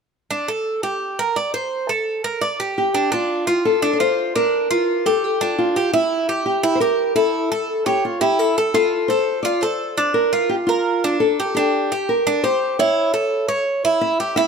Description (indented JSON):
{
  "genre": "latin",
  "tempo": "171 BPM",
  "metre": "4/4",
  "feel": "straight",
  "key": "D minor",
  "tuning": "A4 = 440 Hz",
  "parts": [
    { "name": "Cuban tres", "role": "arpeggios", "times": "0.3-14.5 s", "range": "D4 to D5", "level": "-20 LUFS", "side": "right 2 dB", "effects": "none" },
    { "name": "nylon-string guitar", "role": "melody", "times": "2.8-14.5 s", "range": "E4 to E5", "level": "-19 LUFS", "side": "left 1 dB", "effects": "none" }
  ],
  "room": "moderate plate reverb, RT60 2.9 s",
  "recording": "none",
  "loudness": "-17 LUFS",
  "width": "side -5 dB against mid",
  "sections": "0.3-3.1 A section; 3.1-14.5 B section",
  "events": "none",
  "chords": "0.3 D5; 1.0 Gm; 1.7 Am; 2.4 G5; 3.1 Dm; 4.5 Gm7; 5.9 Edim; 7.3 A; 8.7 Dm; 10.2 Bb; 11.6 Gm; 13.0 A"
}